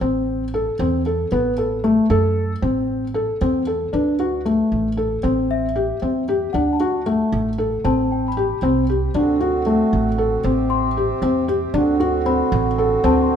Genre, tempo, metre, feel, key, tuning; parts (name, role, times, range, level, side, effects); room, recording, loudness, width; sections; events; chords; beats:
contemporary instrumental, chamber music in an uneven meter; 230 BPM (eighths); 5/8; straight; A dorian; A4 = 440 Hz
felt-muted upright piano; arpeggios; 0.0-13.4 s; A3 to A4; -19 LUFS; left 2 dB
upright bass; bass; 0.0-13.4 s; A1 to F#2; -24 LUFS; right 3 dB
celesta; texture; 3.9-13.4 s; B4 to C6; -27 LUFS; left 6 dB
pedal harmonium; sustained chords; 9.1-13.4 s; C3 to G4; -23 LUFS; right 6 dB
moderate recital hall reverb, RT60 1.7 s; minimal, uncompressed stereo recording; -17 LUFS; side -8 dB against mid
0.0-3.9 A section; 3.9-13.4 B section
0.0 Am; 1.3 B5/A; 2.6 Am; 3.9 D; 5.2 Am7; 6.5 D; 7.8 Am9; 9.1 D7; 10.4 Am7; 11.7 D7
| 0.01 0.28 0.54 0.80 1.06 | 1.32 1.58 1.84 2.10 2.37 | 2.63 2.89 3.15 3.41 3.67 | 3.93 4.19 4.46 4.72 4.98 | 5.24 5.50 5.76 6.02 6.28 | 6.54 6.80 7.06 7.32 7.58 | 7.84 8.11 8.37 8.63 8.89 | 9.15 9.41 9.67 9.93 10.19 | 10.45 10.71 10.96 11.22 11.48 | 11.74 12.00 12.26 12.52 12.78 | 13.04 13.30